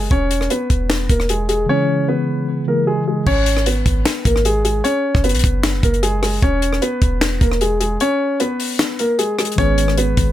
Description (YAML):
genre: hip hop, trap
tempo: 152 BPM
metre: 4/4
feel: half-time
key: G# minor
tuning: A4 = 444 Hz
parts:
  - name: dark concert grand piano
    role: melody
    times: 0.0-10.3 s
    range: G#3 to C#5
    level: -19 LUFS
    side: left 1 dB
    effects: low-pass filter
  - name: clean 808-style bass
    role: bass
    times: 0.0-10.3 s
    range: E1 to A#1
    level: -19 LUFS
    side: equal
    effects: none
  - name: compact cocktail drum kit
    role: drums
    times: 0.1-10.3 s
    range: crash cymbal, finger snaps, hi-hat, kick drum, rim click, snare drum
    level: -19 LUFS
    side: equal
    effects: none
  - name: mellow tine electric piano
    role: accompaniment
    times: 1.7-3.3, 9.6-10.3 s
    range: C#3 to B4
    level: -19 LUFS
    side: equal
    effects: medium stereo tremolo, low-pass filter
room: small room ambience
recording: none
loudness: -15 LUFS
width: side -12 dB against mid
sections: 0.0-3.3 A section; 3.3-10.3 B section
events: break 0.0-1.7; kick muted 8.0-9.6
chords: 0.1 E; 1.7 C#m; 3.3 G#m; 4.8 F#5; 6.4 E; 8.0 C#5; 9.6 G#m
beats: | 0.11 0.50 0.90 1.29 | 1.69 2.08 2.48 2.87 | 3.27 3.66 4.06 4.45 | 4.84 5.24 5.63 6.03 | 6.42 6.82 7.21 7.61 | 8.00 8.40 8.79 9.19 | 9.58 9.98